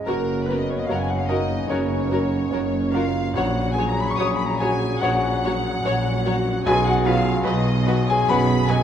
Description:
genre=classical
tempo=73 BPM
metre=4/4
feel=rubato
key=F# major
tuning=A4 = 440 Hz
part: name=clear baby grand piano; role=melody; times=0.0-8.8 s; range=A#1 to D#6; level=-22 LUFS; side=left 1 dB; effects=none
part: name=warm symphonic violin section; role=melody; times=0.1-8.8 s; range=A#4 to C#5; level=-33 LUFS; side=left 4 dB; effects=none
part: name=warm symphonic violin section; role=second line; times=0.1-8.8 s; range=A#4 to D#6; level=-30 LUFS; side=left 3 dB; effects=none
part: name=dark symphonic viola section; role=accompaniment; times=0.1-8.8 s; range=F#3 to F#4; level=-30 LUFS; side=equal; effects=none
part: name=mellow French horn section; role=sustained chords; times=0.1-8.8 s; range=F#3 to C#4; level=-30 LUFS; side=left 4 dB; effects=none
part: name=dark tuba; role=bass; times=0.1-8.8 s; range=F#1 to B1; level=-30 LUFS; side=right 4 dB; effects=none
part: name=warm symphonic cello section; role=bass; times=0.1-8.8 s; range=F#2 to B2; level=-30 LUFS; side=right 3 dB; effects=none
part: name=warm symphonic double bass section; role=bass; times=0.1-8.8 s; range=F#1 to B1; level=-28 LUFS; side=right 3 dB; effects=none
room=moderate concert hall reverb, RT60 1.9 s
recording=none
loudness=-19 LUFS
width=side -9 dB against mid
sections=0.1-8.8 A section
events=none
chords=0.1 F#; 3.4 F#/A#; 6.7 B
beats=| 0.08 0.91 1.71 2.53 | 3.37 4.20 5.04 5.86 | 6.67 7.47 8.29

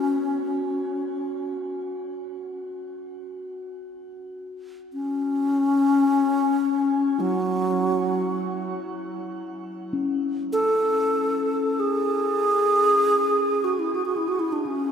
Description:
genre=world meditative, free-time meditation music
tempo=free time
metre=none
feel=none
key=F# minor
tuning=A4 = 440 Hz
part: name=breathy bass flute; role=melody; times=0.0-14.9 s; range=F#3 to A4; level=-22 LUFS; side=equal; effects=shimmer reverb, diffuse ambient delay
part: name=bronze singing bowl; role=texture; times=0.0-14.9 s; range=C#4 to F#4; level=-32 LUFS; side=left 2 dB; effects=shimmer reverb
room=wet cathedral reverb, RT60 6.1 s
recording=in a vast, echoing space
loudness=-21 LUFS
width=side -7 dB against mid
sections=0.0-8.9 A section; 8.9-14.9 A section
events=none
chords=none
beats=free time

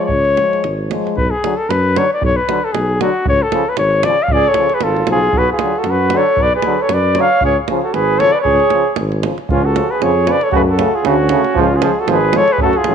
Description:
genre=balkan folk, Balkan brass band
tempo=115 BPM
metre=2/4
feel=swing 55% on 16ths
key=C# phrygian dominant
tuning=A4 = 441 Hz
part: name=mellow flugelhorn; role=melody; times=0.0-12.9 s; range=E#4 to E#5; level=-16 LUFS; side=left 3 dB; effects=none
part: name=bright trombone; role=accompaniment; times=0.0-12.9 s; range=C#3 to F#3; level=-23 LUFS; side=right 10 dB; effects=none
part: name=clear euphonium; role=accompaniment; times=0.0-12.9 s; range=E#3 to A3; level=-24 LUFS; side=left 12 dB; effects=none
part: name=mellow tuba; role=bass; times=0.1-12.9 s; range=G#1 to F#2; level=-18 LUFS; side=equal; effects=none
part: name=davul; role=percussion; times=0.1-12.9 s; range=none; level=-23 LUFS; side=right 4 dB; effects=none
part: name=mellow flugelhorn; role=second line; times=4.3-12.9 s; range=C#4 to C#5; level=-19 LUFS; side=right 9 dB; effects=none
room=moderate echo chamber reverb, RT60 2.1 s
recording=1960s-style stereo with parts hard left and right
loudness=-12 LUFS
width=side -7 dB against mid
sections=0.0-1.2 A section; 1.2-9.5 B section; 9.5-12.9 A section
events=none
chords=0.0 C#; 1.2 Bm; 3.3 C#; 5.3 Bm; 7.4 C#; 10.5 F#m; 11.6 C#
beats=| 0.11 0.63 | 1.16 1.69 | 2.21 2.73 | 3.25 3.78 | 4.30 4.82 | 5.34 5.86 | 6.38 6.90 | 7.42 7.94 | 8.46 8.98 | 9.50 10.02 | 10.54 11.05 | 11.57 12.09 | 12.61

